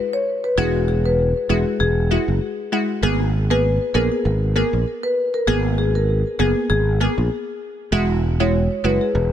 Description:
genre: dancehall.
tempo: 98 BPM.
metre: 4/4.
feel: swing 56% on 16ths.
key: G# minor.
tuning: A4 = 440 Hz.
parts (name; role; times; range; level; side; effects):
marimba with medium mallets; melody; 0.1-9.1 s; G#4 to C#5; -22 LUFS; left 2 dB; digital delay.
glassy wavetable pluck; accompaniment; 0.6-9.0 s; G#3 to G#4; -23 LUFS; right 1 dB; chorus.
sustaining fretless electric bass; bass; 0.6-9.3 s; E1 to A#1; -20 LUFS; equal; none.
room: small room ambience.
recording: none.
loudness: -17 LUFS.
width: side -10 dB against mid.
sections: 0.0-9.3 A section.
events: none.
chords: 0.0 Eadd9; 3.0 G#madd9; 7.9 Eadd9.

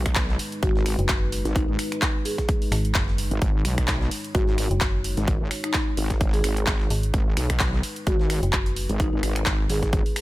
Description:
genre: bass house.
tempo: 129 BPM.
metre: 4/4.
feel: swing 56% on 16ths.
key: G# minor.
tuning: A4 = 440 Hz.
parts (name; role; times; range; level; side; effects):
dark analog pad; sustained chords; 0.0-10.2 s; G#3 to C#5; -36 LUFS; equal; chorus, sidechain pumping.
wobble bass; bass; 0.0-10.0 s; G#1 to B1; -25 LUFS; equal; chorus, tube saturation, sidechain pumping.
big-room dance drum kit; drums; 0.1-10.2 s; finger snaps, handclaps, hi-hat; -28 LUFS; equal; overdrive.
electronic kick drum; drums; 0.1-10.0 s; none; -24 LUFS; equal; overdrive.
breakbeat sampler-style drum kit; drums; 0.2-10.2 s; hi-hat, snare drum; -41 LUFS; equal; none.
marimba with soft mallets; melody; 0.6-10.1 s; D#4 to G#4; -31 LUFS; left 1 dB; ping-pong delay.
metallic FM bass; bass; 1.0-8.9 s; F#1 to G#1; -25 LUFS; equal; tube saturation, sidechain pumping.
room: little or no reverb.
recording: none.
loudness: -21 LUFS.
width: side -17 dB against mid.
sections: 0.0-10.2 A section.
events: none.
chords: 0.0 G#5.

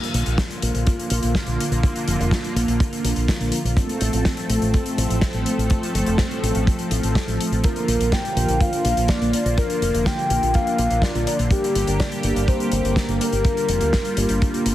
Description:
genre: italo disco.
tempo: 124 BPM.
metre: 4/4.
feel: straight.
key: Bb major.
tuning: A4 = 439 Hz.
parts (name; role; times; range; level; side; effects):
warm analog pad; sustained chords; 0.0-14.7 s; D3 to A4; -26 LUFS; equal; chorus.
mellow synth brass; stabs; 0.0-14.7 s; A3 to Bb4; -27 LUFS; right 1 dB; chorus, phaser, cassette tape.
loose indie drum kit; drums; 0.0-14.7 s; hi-hat, snare drum; -28 LUFS; left 1 dB; none.
fingered electric bass with an envelope filter; bass; 0.1-14.7 s; F1 to D2; -23 LUFS; equal; none.
kick drum; drums; 0.4-14.5 s; none; -21 LUFS; equal; none.
soft octave-layered synth lead; melody; 7.6-14.7 s; G4 to G5; -24 LUFS; left 1 dB; chorus, tape echo.
room: light reverb.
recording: heavily compressed radio sound, multiband compression.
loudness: -18 LUFS.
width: side -14 dB against mid.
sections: 0.0-14.7 A section.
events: filter sweep on analog polysynth 0.0-14.7.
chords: 0.0 Bb; 3.8 F/A; 7.6 Bb; 11.5 Gm.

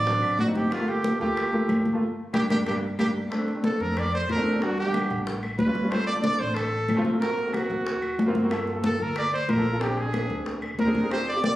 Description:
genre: Afro-Cuban jazz.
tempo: 185 BPM.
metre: 4/4.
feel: straight.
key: G minor.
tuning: A4 = 440 Hz.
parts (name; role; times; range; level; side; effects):
clear trumpet; melody; 0.0-11.5 s; F4 to D5; -28 LUFS; right 2 dB; none.
upright bass; bass; 0.0-11.5 s; G1 to G2; -34 LUFS; equal; none.
warm concert grand piano; accompaniment; 0.1-11.6 s; F#3 to F#5; -28 LUFS; equal; none.
bongos; percussion; 0.1-11.6 s; none; -36 LUFS; left 3 dB; none.
congas; percussion; 0.1-11.6 s; none; -28 LUFS; left 1 dB; none.
claves; percussion; 0.2-11.3 s; none; -40 LUFS; left 1 dB; none.
room: wet recital hall reverb, RT60 1.6 s.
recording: recorded on a phone in the room, club reverb.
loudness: -23 LUFS.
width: side -15 dB against mid.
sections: 0.0-3.3 A section; 3.3-11.6 B section.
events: band accent 2.0-3.3; drum fill 2.7-3.3.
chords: 0.0 D7b9; 0.7 Gm9; 3.3 Bbmaj9; 4.6 Em9; 5.3 A7b13; 5.9 Dm7; 7.2 Ab9; 8.5 Gm9; 9.8 Bb7.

